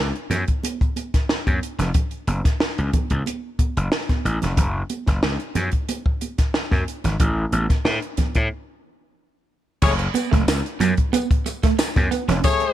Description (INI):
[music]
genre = funk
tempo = 91 BPM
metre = 4/4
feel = straight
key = F# minor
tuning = A4 = 439 Hz
[part]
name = gritty slap bass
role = bass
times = 0.0-12.4 s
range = E#1 to A2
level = -22 LUFS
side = equal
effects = overdrive
[part]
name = compact cocktail drum kit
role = drums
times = 0.2-12.7 s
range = crash cymbal, hi-hat, kick drum, snare drum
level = -21 LUFS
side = equal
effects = none
[part]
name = congas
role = percussion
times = 0.3-12.6 s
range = none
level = -29 LUFS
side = right 5 dB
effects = none
[part]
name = warm horn section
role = second line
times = 9.8-12.7 s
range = A3 to C#5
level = -22 LUFS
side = left 5 dB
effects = none
[part]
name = tambourine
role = percussion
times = 9.8-12.6 s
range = none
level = -36 LUFS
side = left 5 dB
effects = none
[part]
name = electric guitar at the edge of break-up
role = riff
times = 10.0-12.6 s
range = F#3 to C#4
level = -24 LUFS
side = right 8 dB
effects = none
[sound]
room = small room ambience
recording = none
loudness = -19 LUFS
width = side -13 dB against mid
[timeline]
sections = 0.0-9.8 A section; 9.8-12.7 B section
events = break 8.5-9.8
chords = 0.0 F#5; 7.2 N.C.; 9.8 F#m